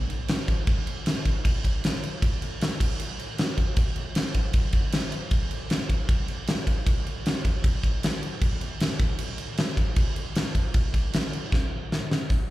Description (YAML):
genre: rock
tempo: 155 BPM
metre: 4/4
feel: straight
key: none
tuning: none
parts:
  - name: huge arena drum kit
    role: drums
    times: 0.1-12.4 s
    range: crash cymbal, hi-hat, kick drum, snare drum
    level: -24 LUFS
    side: equal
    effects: none
room: moderate club reverb, RT60 0.6 s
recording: live gig heard through the venue's PA, club reverb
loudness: -24 LUFS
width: side -16 dB against mid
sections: 0.0-12.3 A section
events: drum fill 11.5-12.3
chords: none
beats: 0.29 0.67 1.06 | 1.45 1.83 2.22 2.61 | 3.00 3.38 3.77 4.16 | 4.54 4.93 5.32 5.71 | 6.09 6.48 6.87 7.26 | 7.64 8.03 8.42 8.81 | 9.20 9.58 9.97 10.36 | 10.75 11.14 11.53 11.92 | 12.31